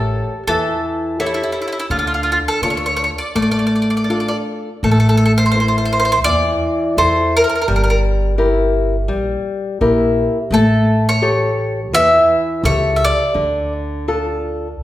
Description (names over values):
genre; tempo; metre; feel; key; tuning
italian folk, Italian serenade; 84 BPM; 4/4; swing 54% on 8ths, rubato; unclear; A4 = 440 Hz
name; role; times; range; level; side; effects
bowl-back mandolin; melody; 0.0-13.7 s; E4 to E5; -17 LUFS; right 1 dB; none
nylon-string guitar; accompaniment; 0.0-14.7 s; D3 to E5; -18 LUFS; left 2 dB; none
upright bass; bass; 0.0-14.8 s; G1 to E2; -20 LUFS; equal; none
room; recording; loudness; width
wet recital hall reverb, RT60 1.4 s; recorded in a church or concert hall; -14 LUFS; side -14 dB against mid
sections
0.0-4.8 A section; 4.8-14.8 B section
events
none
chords
0.0 A7; 1.9 Dm; 4.8 Am; 7.7 Edim/G; 10.5 A7; 13.4 Dm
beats
0.47 1.18 | 1.90 2.62 3.35 4.09 | 4.83 5.55 6.26 6.98 | 7.69 8.39 9.10 9.80 | 10.51 11.22 11.93 12.65 | 13.36 14.09 14.82